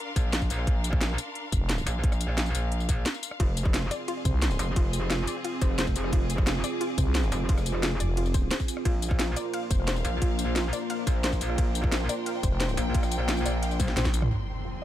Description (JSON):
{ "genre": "dark technical drum and bass", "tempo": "176 BPM", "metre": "4/4", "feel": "straight", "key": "F dorian", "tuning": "A4 = 440 Hz", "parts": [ { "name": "clear studio string section", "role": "texture", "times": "0.0-14.8 s", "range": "C4 to D6", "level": "-38 LUFS", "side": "left 1 dB", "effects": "sidechain pumping" }, { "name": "metallic wobble bass", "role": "bass", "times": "0.2-14.0 s", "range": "F1 to Bb1", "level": "-29 LUFS", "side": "equal", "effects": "chorus, overdrive" }, { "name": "drum and bass drum kit", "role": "drums", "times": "0.2-14.8 s", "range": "hi-hat, ride cymbal, rim click, snare drum, tambourine, toms", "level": "-32 LUFS", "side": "equal", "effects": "low-pass filter on hats, low-pass filter on cymbals, low-pass filter on perc, low-pass filter on snare, low-pass filter on toms" }, { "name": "electronic kick drum", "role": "drums", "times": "0.2-14.1 s", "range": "none", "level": "-26 LUFS", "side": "equal", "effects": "none" }, { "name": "growling FM bass", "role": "bass", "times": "1.5-1.9, 4.3-4.6, 7.0-10.0, 12.4-14.3 s", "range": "F1 to C2", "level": "-27 LUFS", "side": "equal", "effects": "none" }, { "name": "dark analog pad", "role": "sustained chords", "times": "3.9-14.8 s", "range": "Bb3 to G5", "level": "-34 LUFS", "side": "right 1 dB", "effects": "chorus, sidechain pumping" }, { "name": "wide unison pluck", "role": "arpeggios", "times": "3.4-14.8 s", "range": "F4 to F5", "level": "-36 LUFS", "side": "left 3 dB", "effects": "sidechain pumping, ping-pong delay" }, { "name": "impact", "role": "sound effects", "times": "14.3-14.8 s", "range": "none", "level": "-33 LUFS", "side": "equal", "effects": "none" } ], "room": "little or no reverb", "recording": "none", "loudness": "-24 LUFS", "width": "side -12 dB against mid", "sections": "0.0-14.3 A section", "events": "drop 0.0-14.3; break 3.1-3.4; drum fill 13.8-14.3; band accent 14.0; impact 14.3-14.8", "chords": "0.0 Fm; 8.9 Bbadd9; 14.3 Fm" }